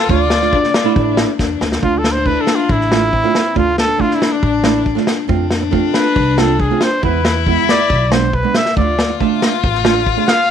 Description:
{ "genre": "klezmer", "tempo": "138 BPM", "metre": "4/4", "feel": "straight", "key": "D dorian sharp4", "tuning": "A4 = 440 Hz", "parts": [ { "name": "warm cornet", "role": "melody", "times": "0.0-10.5 s", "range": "D4 to F5", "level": "-17 LUFS", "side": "equal", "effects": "none" }, { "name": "warm violin", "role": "second line", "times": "0.0-10.5 s", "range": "C4 to F4", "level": "-19 LUFS", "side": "left 10 dB", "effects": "none" }, { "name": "nylon-string guitar", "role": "accompaniment", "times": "0.1-10.3 s", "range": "G#3 to E5", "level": "-19 LUFS", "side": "right 12 dB", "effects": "none" }, { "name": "upright bass", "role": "bass", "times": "0.1-10.2 s", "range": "A1 to F2", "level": "-20 LUFS", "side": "equal", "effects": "none" }, { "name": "vintage drum kit", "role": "drums", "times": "0.1-10.4 s", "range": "kick drum, snare drum", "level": "-18 LUFS", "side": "equal", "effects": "none" } ], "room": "light reverb, small room reverb", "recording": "1960s-style stereo with parts hard left and right", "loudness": "-12 LUFS", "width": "side -8 dB against mid", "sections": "0.0-1.8 A section; 1.8-10.5 B section", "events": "drum fill 1.4-1.8; cornet solo 1.8-10.5", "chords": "0.0 Dm; 5.3 F; 7.0 E; 8.8 Dm" }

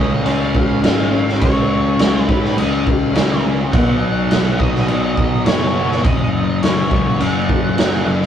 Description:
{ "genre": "rock, shoegaze and dream pop", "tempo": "104 BPM", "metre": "4/4", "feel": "straight", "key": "B lydian", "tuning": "A4 = 441 Hz", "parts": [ { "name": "octave-fuzz lead guitar", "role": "melody", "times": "0.0-8.3 s", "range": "C#5 to F#5", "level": "-25 LUFS", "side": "left 1 dB", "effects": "distortion" }, { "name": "fuzz guitar", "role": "riff", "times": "0.0-8.3 s", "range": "F#2 to C#4", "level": "-18 LUFS", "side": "left 2 dB", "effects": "distortion" }, { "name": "overdriven picked electric bass", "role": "bass", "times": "0.0-8.3 s", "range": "F#1 to G#2", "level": "-22 LUFS", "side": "equal", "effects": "none" }, { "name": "raw garage drum kit", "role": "drums", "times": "0.3-8.3 s", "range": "crash cymbal, kick drum, snare drum", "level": "-17 LUFS", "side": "right 1 dB", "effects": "none" } ], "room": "moderate small room reverb, RT60 0.5 s", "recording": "rough rehearsal-room recording", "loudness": "-14 LUFS", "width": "side -9 dB against mid", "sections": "0.0-8.3 A section", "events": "none", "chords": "0.0 C#; 3.7 Bsus2; 6.0 F#5" }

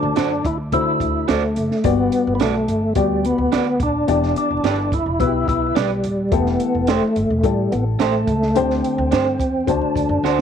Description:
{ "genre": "uptempo 1960s-style soul", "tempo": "107 BPM", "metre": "4/4", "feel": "straight", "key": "G major", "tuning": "A4 = 440 Hz", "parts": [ { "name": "percussive tonewheel organ", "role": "melody", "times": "0.0-10.4 s", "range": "G3 to E4", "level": "-20 LUFS", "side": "equal", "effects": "overdrive, chorus vibrato, slow rotary speaker" }, { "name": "dark upright piano", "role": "accompaniment", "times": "0.0-10.4 s", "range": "G2 to D5", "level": "-23 LUFS", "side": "left 12 dB", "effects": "none" }, { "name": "upright bass", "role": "bass", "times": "0.0-10.4 s", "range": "Eb1 to D3", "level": "-24 LUFS", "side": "equal", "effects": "none" }, { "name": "electric guitar through a small old amp", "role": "stabs", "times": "0.2-10.4 s", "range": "D4 to D5", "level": "-24 LUFS", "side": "right 12 dB", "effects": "none" }, { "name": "compact cocktail drum kit", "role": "drums", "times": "0.2-10.4 s", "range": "hi-hat, kick drum, snare drum", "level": "-24 LUFS", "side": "right 3 dB", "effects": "none" } ], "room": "light reverb, studio ambience", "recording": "1960s-style stereo with parts hard left and right, vinyl crackle", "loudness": "-16 LUFS", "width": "side -8 dB against mid", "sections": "0.0-10.4 A section", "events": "drum fill 10.2", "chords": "0.0 D7; 1.8 Gmaj7; 4.1 Em7; 6.3 A7(no3)/E; 8.6 D7sus4; 9.7 D7" }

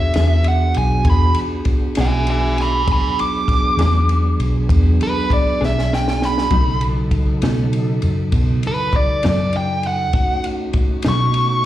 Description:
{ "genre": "slow blues", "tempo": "66 BPM (dotted quarters)", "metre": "12/8", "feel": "straight", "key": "E mixolydian", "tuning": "A4 = 440 Hz", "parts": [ { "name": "dark smooth lead guitar", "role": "melody", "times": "0.0-11.7 s", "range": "B4 to D6", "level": "-20 LUFS", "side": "right 1 dB", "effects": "overdrive, slapback echo" }, { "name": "mellow tonewheel organ", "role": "sustained chords", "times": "0.0-11.7 s", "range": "C#3 to A4", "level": "-24 LUFS", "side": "right 1 dB", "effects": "chorus vibrato, slow rotary speaker" }, { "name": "vintage muted fingered electric bass", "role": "bass", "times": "0.0-11.6 s", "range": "E1 to B2", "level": "-18 LUFS", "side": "equal", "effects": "none" }, { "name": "compact cocktail drum kit", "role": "drums", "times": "0.1-11.5 s", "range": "kick drum, ride cymbal, snare drum", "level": "-22 LUFS", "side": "equal", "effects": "none" }, { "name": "clean electric guitar", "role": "accompaniment", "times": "0.2-11.2 s", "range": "B2 to G#4", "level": "-26 LUFS", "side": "left 5 dB", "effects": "tremolo, slapback echo" } ], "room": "small room ambience", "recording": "live gig heard through the venue's PA, club reverb", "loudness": "-15 LUFS", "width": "side -13 dB against mid", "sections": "0.0-11.7 A section", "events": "lead electric guitar solo 0.0-11.7; drum fill 5.6-6.5", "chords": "0.0 E7; 6.5 B7" }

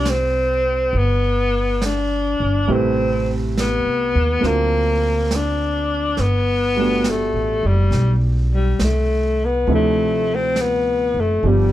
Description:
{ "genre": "jazz ballad", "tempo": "68 BPM", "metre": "4/4", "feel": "swing 67% on 8ths", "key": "G major", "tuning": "A4 = 436 Hz", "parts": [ { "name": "breathy tenor saxophone", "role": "melody", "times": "0.0-11.7 s", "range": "G3 to D4", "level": "-19 LUFS", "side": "left 2 dB", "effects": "none" }, { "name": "warm baby grand piano", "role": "accompaniment", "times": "0.0-11.7 s", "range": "C3 to B4", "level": "-24 LUFS", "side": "right 2 dB", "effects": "none" }, { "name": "upright bass", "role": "bass", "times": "0.0-11.7 s", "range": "F#1 to Eb2", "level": "-20 LUFS", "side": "equal", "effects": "none" }, { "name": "jazz brush drum kit", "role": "drums", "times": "0.1-11.7 s", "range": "brushed snare drum, hi-hat, snare drum", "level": "-29 LUFS", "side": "right 2 dB", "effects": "none" } ], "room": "light reverb", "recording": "dark, warm production", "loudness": "-16 LUFS", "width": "side -13 dB against mid", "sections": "0.0-11.7 A section", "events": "none", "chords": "0.0 Cmaj9; 2.7 Am7; 4.4 D7alt; 6.2 Gmaj9; 9.7 Dm7" }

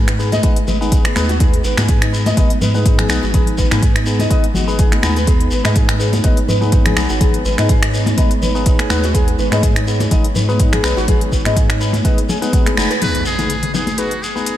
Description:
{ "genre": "afro house", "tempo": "124 BPM", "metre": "4/4", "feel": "swing 54% on 16ths", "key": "G# minor pentatonic", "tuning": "A4 = 444 Hz", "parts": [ { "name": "dark analog pad", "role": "sustained chords", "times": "0.0-14.6 s", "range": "G#3 to C#5", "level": "-25 LUFS", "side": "right 2 dB", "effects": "chorus, sidechain pumping" }, { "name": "nylon-string guitar", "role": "arpeggios", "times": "0.0-13.0 s", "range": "D#4 to D#5", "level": "-24 LUFS", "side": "left 1 dB", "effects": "lush chorus, sidechain pumping, analog delay" }, { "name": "round analog bass", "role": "bass", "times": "0.0-12.9 s", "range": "F#1 to G#2", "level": "-19 LUFS", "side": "equal", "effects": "sidechain pumping" }, { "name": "afro-pop drum kit", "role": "drums", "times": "0.1-14.6 s", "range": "finger snaps, hi-hat, toms", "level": "-23 LUFS", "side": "equal", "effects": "none" }, { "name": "tine electric piano", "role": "stabs", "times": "0.2-14.6 s", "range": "B3 to B4", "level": "-23 LUFS", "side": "left 3 dB", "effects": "phaser, sidechain pumping, analog delay" }, { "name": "shekere", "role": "percussion", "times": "0.2-14.6 s", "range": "none", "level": "-28 LUFS", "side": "left 2 dB", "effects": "none" }, { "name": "congas", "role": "percussion", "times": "0.3-14.4 s", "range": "none", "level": "-24 LUFS", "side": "left 2 dB", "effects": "none" }, { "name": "electronic kick drum", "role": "drums", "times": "0.4-12.6 s", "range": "none", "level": "-15 LUFS", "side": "equal", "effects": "none" }, { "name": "trumpet with metal mute", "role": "melody", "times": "13.0-14.6 s", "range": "F#4 to B4", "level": "-22 LUFS", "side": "equal", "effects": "analog delay" }, { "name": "impact", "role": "sound effects", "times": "13.0-14.6 s", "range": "none", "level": "-24 LUFS", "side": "equal", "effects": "none" } ], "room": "light reverb", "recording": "none", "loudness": "-13 LUFS", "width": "side -12 dB against mid", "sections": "0.0-13.0 A section; 13.0-14.6 B section", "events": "band accent 12.8; impact 13.0-14.6", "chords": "0.0 G#m" }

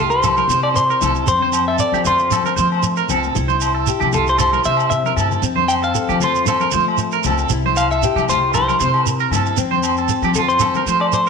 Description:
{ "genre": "highlife guitar band", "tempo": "116 BPM", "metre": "4/4", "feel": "straight", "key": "F major", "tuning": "A4 = 440 Hz", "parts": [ { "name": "picked steel-string acoustic guitar", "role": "accompaniment", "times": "0.0-11.3 s", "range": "F2 to A4", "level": "-24 LUFS", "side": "left 11 dB", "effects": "none" }, { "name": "electric guitar at the edge of break-up", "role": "arpeggios", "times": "0.0-11.3 s", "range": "F4 to C5", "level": "-20 LUFS", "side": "right 10 dB", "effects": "tremolo, tape echo" }, { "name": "upright bass", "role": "bass", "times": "0.0-11.3 s", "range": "C2 to F3", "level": "-23 LUFS", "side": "equal", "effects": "none" }, { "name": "semi-hollow electric guitar", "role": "melody", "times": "0.1-11.3 s", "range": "A4 to G5", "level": "-18 LUFS", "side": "left 2 dB", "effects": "spring reverb" }, { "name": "shekere", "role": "percussion", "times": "0.1-11.3 s", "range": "none", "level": "-24 LUFS", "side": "right 8 dB", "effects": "none" }, { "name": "agogo bells", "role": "percussion", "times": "0.2-11.1 s", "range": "none", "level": "-26 LUFS", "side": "left 11 dB", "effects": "none" }, { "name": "congas", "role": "percussion", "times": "0.2-10.9 s", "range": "none", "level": "-28 LUFS", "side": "left 11 dB", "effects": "none" } ], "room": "wet echo chamber reverb, RT60 1.4 s, small room ambience", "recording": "1960s-style stereo with parts hard left and right", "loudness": "-14 LUFS", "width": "side -5 dB against mid", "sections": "0.0-11.3 A section", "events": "drum fill 5.0-5.4", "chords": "0.0 C; 1.3 F; 3.4 C; 5.4 F; 7.5 C; 9.6 F" }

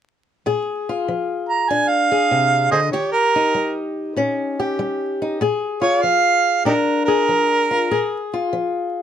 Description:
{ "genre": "acoustic country blues, solo or duo", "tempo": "97 BPM", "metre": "4/4", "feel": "swing 67% on 8ths", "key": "Bb mixolydian", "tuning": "A4 = 441 Hz", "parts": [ { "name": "fingerpicked old ladder-braced acoustic guitar", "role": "accompaniment", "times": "0.5-9.0 s", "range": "Bb2 to Ab4", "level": "-21 LUFS", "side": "left 3 dB", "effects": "none" }, { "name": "mellow harmonica", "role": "melody", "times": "1.5-8.3 s", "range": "Eb4 to Bb5", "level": "-16 LUFS", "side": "right 3 dB", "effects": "none" } ], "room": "light reverb", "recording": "vinyl crackle", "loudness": "-17 LUFS", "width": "side -9 dB against mid", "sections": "0.5-9.0 A section", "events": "none", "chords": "0.5 Bb7; 2.9 Eb7; 5.4 Bb7" }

